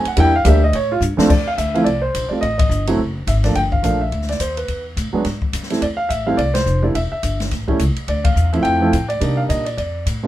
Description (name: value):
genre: jazz piano trio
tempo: 212 BPM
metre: 4/4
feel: swing 59% on 8ths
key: D minor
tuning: A4 = 439 Hz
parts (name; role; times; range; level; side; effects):
- warm grand piano; melody; 0.0-10.3 s; D2 to G5; -18 LUFS; right 1 dB; none
- upright bass; bass; 0.0-10.3 s; E1 to C3; -20 LUFS; equal; none
- open jazz drum kit; drums; 0.1-10.1 s; crash cymbal, hi-hat, kick drum, ride cymbal, snare drum; -24 LUFS; left 2 dB; none
room: light reverb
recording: minimal, uncompressed stereo recording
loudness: -16 LUFS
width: side -14 dB against mid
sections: 0.0-1.3 A section; 1.3-10.3 B section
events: grand piano solo 0.0-1.3; drum fill 1.0; band accent 2.6, 6.5, 8.2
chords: 0.2 Em7b5; 0.7 Dmadd11; 1.3 Dm7; 2.4 A7(b5, no3); 3.0 D; 3.6 Gm7; 4.7 E; 5.8 Am; 6.9 Em; 7.5 A; 8.1 Dm7; 9.2 Cm7